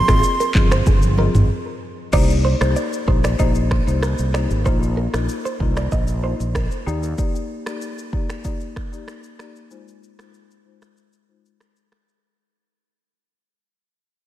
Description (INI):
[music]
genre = afrobeats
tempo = 95 BPM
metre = 4/4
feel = straight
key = unclear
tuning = A4 = 440 Hz
[part]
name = breathy jazz flute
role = melody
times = 0.0-0.9 s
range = C6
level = -23 LUFS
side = right 2 dB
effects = analog delay
[part]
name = marimba with medium mallets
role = accompaniment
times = 0.0-11.5 s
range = Ab3 to Eb5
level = -27 LUFS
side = left 6 dB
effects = low-pass filter
[part]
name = direct-recorded clean electric guitar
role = riff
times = 0.0-7.0 s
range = G4 to Eb5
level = -27 LUFS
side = right 4 dB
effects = lush chorus, low-pass filter, analog delay
[part]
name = fretless electric bass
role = bass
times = 0.1-7.1 s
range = G1 to Eb2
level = -20 LUFS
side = equal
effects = none
[part]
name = afro-pop drum kit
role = drums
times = 0.1-12.2 s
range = crash cymbal, finger snaps, handclaps, kick drum, rim click, shaker, toms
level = -21 LUFS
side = equal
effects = none
[part]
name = congas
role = percussion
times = 0.6-1.3 s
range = none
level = -27 LUFS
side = right 3 dB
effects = none
[sound]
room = light reverb, digital ambience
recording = none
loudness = -17 LUFS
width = side -13 dB against mid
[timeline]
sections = 0.0-2.1 A section; 2.1-12.2 B section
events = break 1.5-2.1, 11.0-12.2; fade-out 2.1-12.2; filter sweep 2.1-12.2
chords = 0.0 Ab6; 2.1 Cm7; 4.7 Bbsus4; 6.9 Ebmaj7; 9.7 Ab6